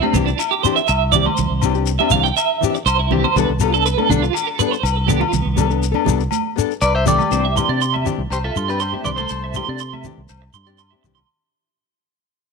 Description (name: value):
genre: highlife guitar band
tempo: 121 BPM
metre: 4/4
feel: straight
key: C major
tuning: A4 = 438 Hz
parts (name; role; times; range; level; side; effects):
- nylon-string guitar; accompaniment; 0.0-11.2 s; E3 to A4; -23 LUFS; left 15 dB; none
- clean electric guitar; arpeggios; 0.0-11.3 s; B3 to C6; -20 LUFS; right 14 dB; tremolo, slapback echo
- agogo bells; percussion; 0.0-11.3 s; none; -26 LUFS; left 14 dB; none
- congas; percussion; 0.0-11.3 s; none; -25 LUFS; right 12 dB; none
- fingered electric bass; bass; 0.1-11.2 s; C2 to C3; -21 LUFS; equal; none
- shekere; percussion; 0.1-11.2 s; none; -24 LUFS; left 5 dB; none
- clean electric guitar; melody; 6.8-10.8 s; F4 to E5; -22 LUFS; left 2 dB; lush chorus
room: light reverb, small room ambience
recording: 1960s-style stereo with parts hard left and right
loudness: -16 LUFS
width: side -4 dB against mid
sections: 0.0-7.3 A section; 7.3-11.3 B section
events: clean electric guitar solo 0.0-7.3; fade-out 7.3-11.3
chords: 0.0 Cadd9; 3.4 Gadd9/C; 7.3 Cadd9